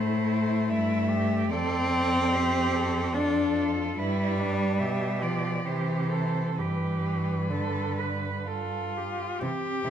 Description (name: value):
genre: classical, lyrical piece for cello ensemble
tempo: 59-74 BPM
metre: 3/4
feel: rubato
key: unclear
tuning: A4 = 440 Hz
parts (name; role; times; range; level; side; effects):
- rich cello; melody; 0.0-9.9 s; F4 to E5; -34 LUFS; left 5 dB; none
- rich cello; second line; 0.0-9.9 s; C4 to B4; -34 LUFS; right 10 dB; none
- rich cello; accompaniment; 0.0-9.9 s; D3 to D4; -27 LUFS; left 2 dB; none
- rich cello; bass; 0.0-9.9 s; F2 to C3; -32 LUFS; right 3 dB; none
room: moderate recital hall reverb, RT60 1.4 s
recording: none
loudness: -25 LUFS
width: side -9 dB against mid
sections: 0.0-9.4 A section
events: none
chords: 0.0 Am; 1.5 Dm7/F; 4.0 G; 5.7 C; 6.6 G